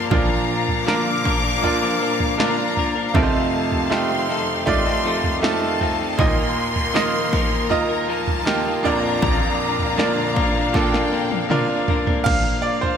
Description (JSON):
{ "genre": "pop ballad", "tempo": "79 BPM", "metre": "4/4", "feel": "straight", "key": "Bb major", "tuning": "A4 = 440 Hz", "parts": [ { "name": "rich studio violin section", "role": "second line", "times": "0.0-12.2 s", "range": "F5 to D6", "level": "-26 LUFS", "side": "left 2 dB", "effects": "none" }, { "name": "bright upright piano", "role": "accompaniment", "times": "0.0-13.0 s", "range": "Bb1 to F5", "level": "-22 LUFS", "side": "right 4 dB", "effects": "none" }, { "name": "dark studio string section", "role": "sustained chords", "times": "0.0-13.0 s", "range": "Eb2 to F5", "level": "-26 LUFS", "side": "left 2 dB", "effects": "none" }, { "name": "direct-recorded clean electric guitar", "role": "arpeggios", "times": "0.0-13.0 s", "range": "Bb2 to Bb4", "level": "-26 LUFS", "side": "left 8 dB", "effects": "lush chorus, ping-pong delay" }, { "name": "punchy analog drum machine", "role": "drums", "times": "0.1-13.0 s", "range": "crash cymbal, kick drum, snare drum, toms", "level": "-23 LUFS", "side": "equal", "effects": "gated reverb" } ], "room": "moderate plate reverb, RT60 1.9 s, studio reverb", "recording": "bright 1980s-style digital production", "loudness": "-18 LUFS", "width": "side -8 dB against mid", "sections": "0.0-12.3 A section", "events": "drum fill 10.7-12.3", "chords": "0.1 Bb; 3.1 F7; 6.2 Ebsus2; 8.8 Bb" }